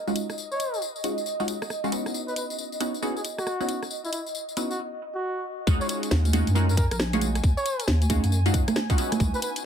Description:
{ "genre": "UK garage, two-step garage", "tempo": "136 BPM", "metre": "4/4", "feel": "swing 63% on 16ths", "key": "Eb phrygian", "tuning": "A4 = 440 Hz", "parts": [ { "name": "ethereal airy pad", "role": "sustained chords", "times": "0.0-9.7 s", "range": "Eb5 to Ab5", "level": "-35 LUFS", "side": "right 2 dB", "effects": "ensemble chorus, built-in reverb, sidechain pumping" }, { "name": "punchy chord stab", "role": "stabs", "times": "0.1-9.7 s", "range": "Ab3 to Gb4", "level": "-29 LUFS", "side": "equal", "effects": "chorus, phaser, ping-pong delay" }, { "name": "garage drum kit", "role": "drums", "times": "0.1-9.6 s", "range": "congas, hi-hat, rim click, snare drum, tambourine", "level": "-30 LUFS", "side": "right 2 dB", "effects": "soft clipping on snare" }, { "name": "trumpet with bucket mute", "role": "melody", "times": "0.5-9.5 s", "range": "Fb4 to Db5", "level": "-32 LUFS", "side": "equal", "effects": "ping-pong delay" }, { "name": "deep soft wobble bass", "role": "bass", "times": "5.7-9.3 s", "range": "Bb1 to Gb2", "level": "-23 LUFS", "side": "equal", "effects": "chorus" }, { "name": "electronic kick drum", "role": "drums", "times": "5.7-9.3 s", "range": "none", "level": "-24 LUFS", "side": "equal", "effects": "none" } ], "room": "moderate studio ambience, RT60 0.5 s", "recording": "dense, heavily limited modern master", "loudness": "-24 LUFS", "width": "side -8 dB against mid", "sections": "0.0-5.7 A section; 5.7-9.7 B section", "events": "drop 5.7-9.7", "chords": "0.0 Ebm11; 2.1 Dbm11; 5.7 Ebm11" }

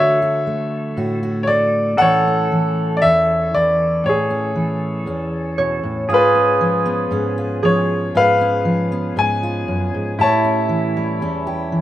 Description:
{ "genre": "folk", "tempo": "58 BPM", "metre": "4/4", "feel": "straight", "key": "A major", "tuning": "A4 = 440 Hz", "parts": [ { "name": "bright grand piano", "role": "melody", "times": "0.0-11.8 s", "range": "E#4 to A5", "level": "-18 LUFS", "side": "left 1 dB", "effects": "none" }, { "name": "pedal steel guitar", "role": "second line", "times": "0.0-11.8 s", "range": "E4 to A4", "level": "-24 LUFS", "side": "right 3 dB", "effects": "analog delay" }, { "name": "fingerpicked steel-string acoustic guitar", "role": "accompaniment", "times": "0.0-11.8 s", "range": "E2 to G4", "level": "-21 LUFS", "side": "equal", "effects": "none" }, { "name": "Celtic harp", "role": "arpeggios", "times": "0.0-9.9 s", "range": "G#4 to C#5", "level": "-24 LUFS", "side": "right 3 dB", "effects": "none" } ], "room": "light reverb, studio ambience", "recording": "rough home demo mix", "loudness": "-15 LUFS", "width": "side -13 dB against mid", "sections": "0.0-11.8 A section", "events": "none", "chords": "0.0 Dmaj7; 2.0 Amaj7; 6.1 C#7/G#; 10.2 A7" }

